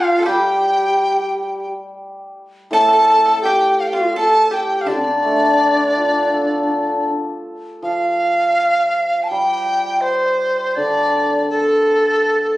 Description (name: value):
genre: chinese traditional, Chinese chamber ensemble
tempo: 82 BPM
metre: 4/4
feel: uneven beats, rubato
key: D yu mode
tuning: A4 = 438 Hz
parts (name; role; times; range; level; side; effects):
- large dizi; melody; 0.0-12.6 s; A4 to A5; -16 LUFS; equal; none
- breathy mellow low xiao; second line; 0.0-7.1 s; C4 to A4; -22 LUFS; left 1 dB; none
- pipa; second line; 0.0-7.0 s; D4 to A4; -26 LUFS; right 2 dB; none
- hammered dulcimer; accompaniment; 0.3-12.6 s; A2 to A4; -21 LUFS; left 1 dB; none
room: moderate recital hall reverb, RT60 1.6 s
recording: recorded on a phone in the room, studio reverb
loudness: -14 LUFS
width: side -16 dB against mid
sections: 0.0-7.8 A section; 7.8-12.6 B section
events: none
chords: none